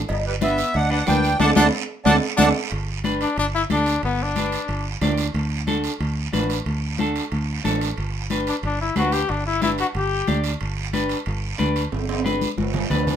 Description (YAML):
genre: latin, cumbia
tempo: 182 BPM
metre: 4/4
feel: straight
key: G major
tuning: A4 = 440 Hz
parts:
  - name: fingered electric bass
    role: bass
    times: 0.0-13.2 s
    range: G1 to D2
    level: -25 LUFS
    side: equal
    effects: none
  - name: congas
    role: percussion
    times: 0.1-13.1 s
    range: none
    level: -26 LUFS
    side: left 5 dB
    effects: none
  - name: cowbell and timbales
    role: percussion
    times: 0.1-13.1 s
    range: none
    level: -30 LUFS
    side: right 4 dB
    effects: none
  - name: guiro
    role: percussion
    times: 0.1-13.2 s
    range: none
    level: -33 LUFS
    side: right 9 dB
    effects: none
  - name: accordion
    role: melody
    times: 0.3-2.5 s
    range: B4 to A5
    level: -21 LUFS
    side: right 3 dB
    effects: light tremolo tuning
  - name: clear trumpet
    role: second line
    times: 0.3-4.9, 8.5-10.4 s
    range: G3 to G4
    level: -24 LUFS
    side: left 4 dB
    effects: none
  - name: clean electric guitar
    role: accompaniment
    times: 0.4-13.1 s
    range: D4 to D5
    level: -25 LUFS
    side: equal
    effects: none
room: moderate studio reverb, RT60 0.6 s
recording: minimal, uncompressed stereo recording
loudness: -19 LUFS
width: side -9 dB against mid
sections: 0.0-2.7 A section; 2.7-13.2 B section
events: band accent 1.4-2.7; drum fill 1.7-2.7, 11.9-13.2; trumpet solo 2.7-13.2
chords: 0.1 G; 1.4 D; 2.7 G; 5.3 D; 8.0 G